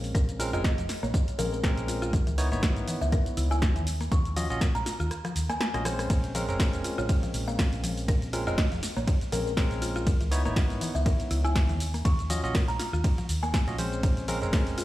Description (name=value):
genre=deep house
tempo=121 BPM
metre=4/4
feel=swing 56% on 16ths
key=Bb minor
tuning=A4 = 440 Hz
part: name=barky tine electric piano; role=stabs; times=0.0-14.8 s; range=Ab3 to Eb5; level=-34 LUFS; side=equal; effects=medium stereo tremolo, sidechain pumping, dub echo
part: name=hollow-body short-scale fingered electric bass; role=bass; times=0.0-14.8 s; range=F1 to Eb2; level=-30 LUFS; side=equal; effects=sidechain pumping
part: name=punchy analog drum machine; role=drums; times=0.0-14.8 s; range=hi-hat, ride cymbal, rim click, shaker, snare drum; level=-34 LUFS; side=equal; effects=none
part: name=mallet-like synth pluck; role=arpeggios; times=0.1-14.8 s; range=Fb3 to Bb4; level=-37 LUFS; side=left 2 dB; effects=chorus, vintage 12-bit sampler grit, sidechain pumping, dub echo
part: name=electronic kick drum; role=drums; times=0.1-14.6 s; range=none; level=-25 LUFS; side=equal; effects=none
part: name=kalimba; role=melody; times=0.5-13.6 s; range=Bb4 to Db6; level=-36 LUFS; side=equal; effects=dub echo
room=light reverb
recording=played on a big sound system in a bare room, stone room reverb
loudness=-25 LUFS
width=side -16 dB against mid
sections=0.0-14.8 A section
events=kick drops out 5.1-6.1; drum fill 5.1-6.1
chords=0.0 Bbm9; 2.1 Dbm9; 3.9 Ebm9; 6.1 Bbm9; 10.1 Dbm9; 11.8 Ebm9; 14.0 Bbm9